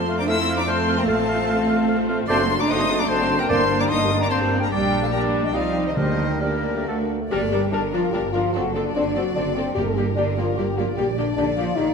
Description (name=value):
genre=quick classical-period movement for symphony orchestra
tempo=148 BPM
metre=3/4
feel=rubato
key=G minor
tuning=A4 = 441 Hz
part: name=rich chamber violin section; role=melody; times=0.0-11.8 s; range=D5 to E6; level=-28 LUFS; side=left 4 dB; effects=none
part: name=bright concert flute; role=second line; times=0.0-7.1 s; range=Bb4 to C6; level=-30 LUFS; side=left 2 dB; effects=none
part: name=warm chamber violin section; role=second line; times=0.0-11.9 s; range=A3 to D5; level=-30 LUFS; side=left 2 dB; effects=none
part: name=rich chamber viola section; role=accompaniment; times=0.0-11.8 s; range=F#3 to Bb4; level=-28 LUFS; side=right 2 dB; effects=none
part: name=warm French horn section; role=sustained chords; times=0.0-11.9 s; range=G3 to A4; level=-25 LUFS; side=left 4 dB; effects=none
part: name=clear chamber double bass section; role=bass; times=0.0-11.9 s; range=F#1 to F2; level=-28 LUFS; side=right 3 dB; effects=none
part: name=clear oboe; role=second line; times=0.1-7.0 s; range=A4 to F5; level=-31 LUFS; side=right 2 dB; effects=none
part: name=mellow bassoon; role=accompaniment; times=0.1-7.3 s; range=G3 to Bb3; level=-30 LUFS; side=right 1 dB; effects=none
part: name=mellow clarinet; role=second line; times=0.2-7.1 s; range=D4 to E5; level=-29 LUFS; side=left 1 dB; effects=none
part: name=rich studio cello section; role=bass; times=0.2-11.9 s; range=C3 to E4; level=-28 LUFS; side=right 4 dB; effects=none
part: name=timpani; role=percussion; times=3.5-6.6, 9.8-10.3 s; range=G2 to D3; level=-30 LUFS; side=right 1 dB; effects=none
room=wet concert hall reverb, RT60 2.4 s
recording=minimal, uncompressed stereo recording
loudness=-19 LUFS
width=side -5 dB against mid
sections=0.0-7.3 A section; 7.3-11.9 B section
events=none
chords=0.0 F; 1.1 F/A; 2.3 D7/F#; 3.5 Gm; 4.7 Gm/Bb; 5.5 Cm; 6.0 Gm/D; 6.9 D; 7.3 Gm; 8.5 D7/F#; 9.8 Gm; 11.0 Gm/Bb